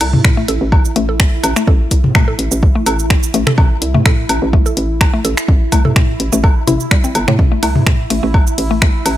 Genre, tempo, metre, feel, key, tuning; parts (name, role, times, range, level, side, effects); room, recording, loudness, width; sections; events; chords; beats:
minimal techno; 126 BPM; 4/4; swing 54% on 16ths; A minor; A4 = 439 Hz
hollow knocking FM bass; bass; 0.0-9.2 s; G1 to A2; -18 LUFS; equal; tube saturation, sidechain pumping
punchy analog drum machine; drums; 0.0-9.2 s; finger snaps, hi-hat, ride cymbal, shaker; -18 LUFS; equal; overdrive
electronic woodblock and toms; percussion; 0.0-9.2 s; -17 LUFS; left 1 dB
bubbling stepped-filter texture; texture; 0.0-9.2 s; E4; -24 LUFS; right 2 dB; chorus, built-in reverb, sidechain pumping
electronic kick drum; drums; 0.2-8.9 s; -12 LUFS; equal; overdrive
mallet-like synth pluck; riff; 0.4-8.9 s; G3 to A4; -21 LUFS; left 2 dB; chorus, sidechain pumping, ping-pong delay
digital ambience; -11 LUFS; side -13 dB against mid
0.0-9.2 A section
0.0 A5
0.25 0.72 1.20 | 1.68 2.15 2.63 3.10 | 3.58 4.06 4.53 5.01 | 5.48 5.96 6.44 6.91 | 7.39 7.87 8.34 8.82